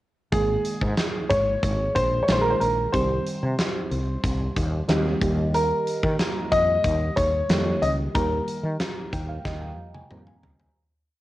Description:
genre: 1980s-style pop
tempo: 92 BPM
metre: 4/4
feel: straight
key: unclear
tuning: A4 = 440 Hz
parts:
  - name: warm concert grand piano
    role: melody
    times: 0.3-10.4 s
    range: Ab4 to Eb5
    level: -24 LUFS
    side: equal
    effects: none
  - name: mellow FM electric piano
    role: accompaniment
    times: 0.3-10.8 s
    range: Eb3 to Bb5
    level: -30 LUFS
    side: right 1 dB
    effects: chorus
  - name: woody fretless electric bass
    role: bass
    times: 0.3-10.7 s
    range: Ab1 to Eb3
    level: -26 LUFS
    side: equal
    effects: none
  - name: big rock drum kit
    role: drums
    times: 0.3-10.7 s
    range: hi-hat, kick drum, snare drum, toms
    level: -27 LUFS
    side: equal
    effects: cassette tape
room: moderate studio reverb, RT60 0.6 s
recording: home recording on cassette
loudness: -21 LUFS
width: side -16 dB against mid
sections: 0.3-10.8 verse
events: FM electric piano fill 4.6-5.5, 8.8-10.8; fade-out 8.2-10.8; drum fill 9.5-10.8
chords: 0.3 Absus2; 2.9 Cm; 5.2 Eb

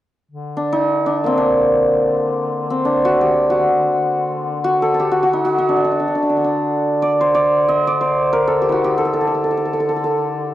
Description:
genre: persian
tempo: free time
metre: none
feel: none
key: D dastgah homayun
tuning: A4 = 440 Hz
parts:
  - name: mellow duduk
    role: drone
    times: 0.3-10.5 s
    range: D3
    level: -26 LUFS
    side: left 3 dB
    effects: stereo widening
  - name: santur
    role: melody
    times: 0.6-10.5 s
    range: Bb3 to Eb5+45c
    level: -15 LUFS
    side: equal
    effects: none
room: studio reverb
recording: dry, close 1970s-style studio recording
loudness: -15 LUFS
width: side -13 dB against mid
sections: 0.3-10.5 A section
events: none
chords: none

